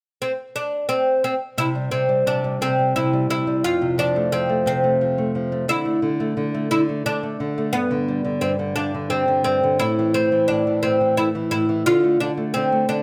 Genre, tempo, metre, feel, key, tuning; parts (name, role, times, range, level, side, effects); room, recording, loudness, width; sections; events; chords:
children's music, lullaby; 58 BPM (dotted quarters); 6/8; straight; C major; A4 = 439 Hz
oud; melody; 0.2-13.0 s; B3 to F4; -22 LUFS; equal
nylon-string guitar; accompaniment; 1.6-13.0 s; F2 to A3; -26 LUFS; equal
light reverb; close, detailed microphones; -21 LUFS; mono
0.0-1.6 A section; 1.6-13.0 B section
0.0 N.C.; 1.6 C5; 3.6 F; 5.7 Dsus2; 7.7 G; 9.8 A5; 11.9 D5